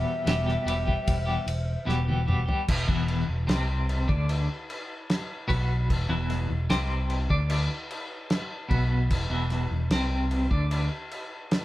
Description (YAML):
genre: psychedelic rock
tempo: 75 BPM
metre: 4/4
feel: straight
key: E minor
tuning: A4 = 439 Hz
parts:
  - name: mellow hollow silver concert flute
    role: melody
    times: 0.0-1.9 s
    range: E5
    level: -32 LUFS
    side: left 1 dB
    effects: none
  - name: twelve-string electric guitar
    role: riff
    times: 0.0-10.9 s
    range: E2 to G4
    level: -30 LUFS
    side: left 1 dB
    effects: tremolo
  - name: fingered electric bass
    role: bass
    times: 0.0-10.9 s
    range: E1 to D2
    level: -27 LUFS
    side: equal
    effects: none
  - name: cloth-damped thuddy drum kit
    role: drums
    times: 0.3-11.6 s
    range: crash cymbal, kick drum, ride cymbal, snare drum, toms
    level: -29 LUFS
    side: equal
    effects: none
room: moderate studio reverb, RT60 0.6 s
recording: band playing live in one room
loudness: -24 LUFS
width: side -16 dB against mid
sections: 0.0-2.7 A section; 2.7-11.6 B section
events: drum fill 1.9-2.7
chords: 0.0 Em; 2.7 E5